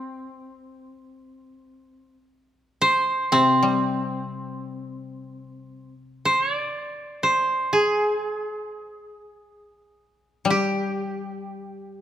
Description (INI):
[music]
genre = japanese traditional, Japanese chamber music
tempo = free time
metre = none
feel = none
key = unclear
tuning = A4 = 441 Hz
[part]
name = koto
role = melody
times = 0.0-12.0 s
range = C4 to D5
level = -22 LUFS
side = right 1 dB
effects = none
[part]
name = koto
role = accompaniment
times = 3.3-6.7, 10.4-12.0 s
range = C3 to G3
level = -27 LUFS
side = left 5 dB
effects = none
[sound]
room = light reverb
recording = none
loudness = -21 LUFS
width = side -10 dB against mid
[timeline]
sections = 0.0-5.6 A section; 5.6-12.0 A section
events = none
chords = none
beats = free time